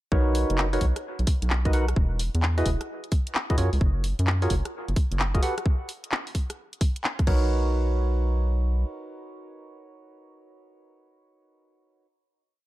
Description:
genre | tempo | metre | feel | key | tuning
UK garage, two-step garage | 130 BPM | 4/4 | swing 66% on 16ths | B major | A4 = 440 Hz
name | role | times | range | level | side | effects
percussive organ stab | stabs | 0.1-12.1 s | D#4 to F#5 | -30 LUFS | right 1 dB | chorus, dub echo
rubbery square bass | bass | 0.1-8.8 s | E1 to F#2 | -24 LUFS | equal | none
electronic kick drum | drums | 0.1-7.4 s | none | -24 LUFS | equal | none
garage drum kit | drums | 0.3-7.4 s | crash cymbal, handclaps, hi-hat, rim click | -30 LUFS | equal | none
room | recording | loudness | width
digital ambience | dark, warm production | -23 LUFS | side -16 dB against mid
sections
0.1-7.5 drop; 7.5-11.2 final hit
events
drop 0.1-7.5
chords
0.1 Bmaj9; 2.0 Emaj9; 3.6 F#maj9; 5.4 Gmaj9; 7.3 Bmaj9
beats
| 0.12 0.58 1.04 1.50 | 1.96 2.42 2.89 3.35 | 3.81 4.27 4.73 5.20 | 5.66 6.12 6.58 7.04 | 7.50 7.96 8.43 8.89 | 9.35 9.81 10.27 10.73

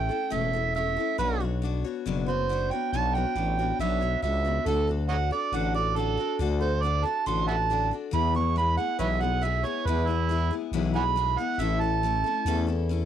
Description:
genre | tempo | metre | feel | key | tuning
honky-tonk and classic country | 138 BPM | 4/4 | straight | A major | A4 = 437 Hz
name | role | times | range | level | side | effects
overdriven harmonica | melody | 0.0-12.6 s | E4 to C#6 | -27 LUFS | right 7 dB | cassette tape
picked steel-string acoustic guitar | accompaniment | 0.0-13.1 s | E2 to C#5 | -31 LUFS | left 10 dB | cassette tape, plate reverb
growling FM bass | bass | 0.0-13.1 s | E1 to E2 | -28 LUFS | left 1 dB | none
room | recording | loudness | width
moderate booth ambience, RT60 0.2 s | home recording on cassette | -24 LUFS | side -10 dB against mid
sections
0.0-13.1 A section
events
harmonica solo 0.0-13.1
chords
0.0 A; 1.2 Bmadd9; 4.7 D; 8.1 E; 11.6 A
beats
0.33 0.76 | 1.19 1.63 2.06 2.50 | 2.93 3.36 3.80 4.23 | 4.66 5.10 5.53 5.96 | 6.40 6.83 7.26 7.70 | 8.13 8.56 9.00 9.43 | 9.86 10.30 10.73 11.16 | 11.60 12.03 12.46 12.90

